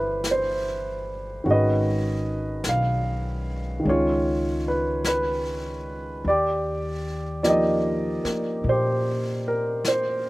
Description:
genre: jazz ballad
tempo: 50 BPM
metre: 4/4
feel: swing 67% on 8ths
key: unclear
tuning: A4 = 441 Hz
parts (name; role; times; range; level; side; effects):
- warm upright piano; accompaniment; 0.0-10.3 s; Eb3 to F5; -23 LUFS; right 1 dB; none
- upright bass; bass; 0.0-10.3 s; G1 to Bb2; -29 LUFS; left 1 dB; none
- jazz brush drum kit; drums; 0.2-10.3 s; brushed snare drum, hi-hat, snare drum; -34 LUFS; left 1 dB; none
room: little or no reverb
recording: recorded outdoors, with no room sound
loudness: -22 LUFS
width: side -19 dB against mid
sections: 0.0-10.3 A section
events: none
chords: 0.0 Cmaj9; 1.4 Abm7; 3.8 Db9; 6.2 Ebmaj7

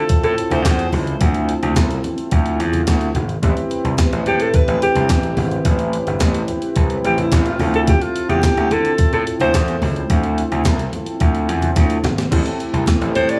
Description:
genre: early-eighties boogie funk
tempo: 108 BPM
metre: 4/4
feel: straight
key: unclear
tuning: A4 = 444 Hz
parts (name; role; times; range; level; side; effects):
- breathy alto saxophone; melody; 0.0-0.9, 4.3-9.8, 13.2-13.4 s; E4 to D5; -22 LUFS; equal; tape echo
- chorused polysynth; accompaniment; 0.0-13.4 s; C4 to B4; -26 LUFS; equal; none
- gritty slap bass; bass; 0.0-13.4 s; G1 to D3; -22 LUFS; equal; overdrive
- clean 12-bit digital drum machine; drums; 0.1-13.4 s; crash cymbal, handclaps, hi-hat, kick drum, snare drum; -20 LUFS; equal; gated reverb
- congas; percussion; 0.1-13.3 s; none; -29 LUFS; equal; none
- brassy analog pad; sustained chords; 12.3-13.4 s; A3 to G4; -32 LUFS; equal; subtle chorus
room: light reverb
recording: small room ambience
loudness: -18 LUFS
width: mono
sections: 0.0-12.3 A section; 12.3-13.4 B section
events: drum fill 11.8-12.3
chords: 0.0 Dm9; 3.4 Am9; 7.6 Dm9; 12.3 Am7

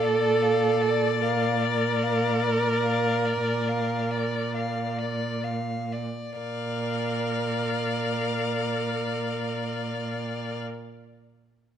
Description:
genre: classical, slow romantic movement for string quartet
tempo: 32-39 BPM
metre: 4/4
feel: rubato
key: Bb major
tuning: A4 = 440 Hz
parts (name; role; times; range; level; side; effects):
- rich violin; melody; 0.0-10.6 s; D5 to F5; -32 LUFS; left 9 dB; none
- rich violin; second line; 0.0-10.6 s; D5 to F5; -32 LUFS; left 5 dB; none
- rich viola; accompaniment; 0.0-10.6 s; A4 to Bb4; -28 LUFS; right 2 dB; none
- rich cello; bass; 0.0-10.6 s; Bb2; -30 LUFS; right 4 dB; none
room: moderate recital hall reverb, RT60 1.5 s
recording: none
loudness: -24 LUFS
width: side -9 dB against mid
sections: 0.0-6.4 A section; 6.4-11.8 B section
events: slowing down 0.0-6.4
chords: 0.0 Bb

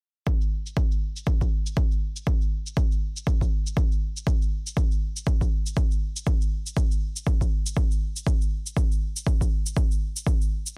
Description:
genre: afro house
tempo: 120 BPM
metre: 4/4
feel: swing 58% on 16ths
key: none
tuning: none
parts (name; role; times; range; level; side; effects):
- electronic kick drum; drums; 0.3-10.4 s; none; -26 LUFS; equal; none
- shaker; drums; 0.3-10.7 s; none; -37 LUFS; equal; low-pass filter on perc
room: little or no reverb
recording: dense, heavily limited modern master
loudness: -25 LUFS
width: mono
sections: 0.3-10.8 A section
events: none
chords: none

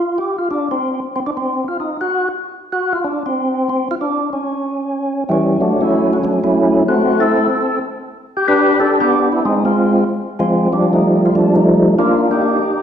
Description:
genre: jazz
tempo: 188 BPM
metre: 4/4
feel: swing 64% on 8ths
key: unclear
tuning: A4 = 437 Hz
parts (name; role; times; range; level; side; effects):
- percussive tonewheel organ; solo; 0.0-12.8 s; E3 to B4; -14 LUFS; equal; slow rotary speaker, overdrive, chorus vibrato
room: wet recital hall reverb, RT60 1.5 s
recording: recorded in a church or concert hall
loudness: -14 LUFS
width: side -8 dB against mid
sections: 0.0-5.6 A section; 5.6-12.8 B section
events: none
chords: 0.0 N.C.; 4.3 Em6; 5.6 F#m7; 6.9 F#m7b5; 7.5 N.C.; 8.1 G69; 9.4 Fm; 10.7 Ebadd9; 12.0 Bbadd11

